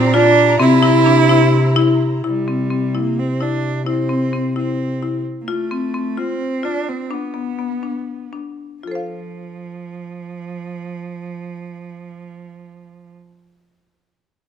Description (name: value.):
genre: contemporary instrumental, chamber music in an uneven meter.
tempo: 234-262 BPM (eighths).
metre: 7/8.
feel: straight.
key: F major.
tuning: A4 = 439 Hz.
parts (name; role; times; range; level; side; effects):
clear cello; melody; 0.0-13.1 s; F3 to E4; -21 LUFS; right 6 dB; none.
bright symphonic string section; sustained chords; 0.0-2.2 s; E4 to Bb5; -25 LUFS; equal; none.
marimba with hard mallets; arpeggios; 0.0-13.8 s; B3 to F5; -19 LUFS; left 5 dB; none.
dark bass clarinet; bass; 0.0-5.4 s; Bb2 to C3; -19 LUFS; left 1 dB; none.
room: moderate recital hall reverb, RT60 1.4 s.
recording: dark, warm production.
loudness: -15 LUFS.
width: side -8 dB against mid.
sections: 0.0-2.2 A section; 2.2-8.8 B section; 8.8-12.3 C section.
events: slowing down 5.5-8.8.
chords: 0.0 Bb6; 0.6 C7; 2.2 C; 5.5 F; 7.1 Bm; 8.8 F.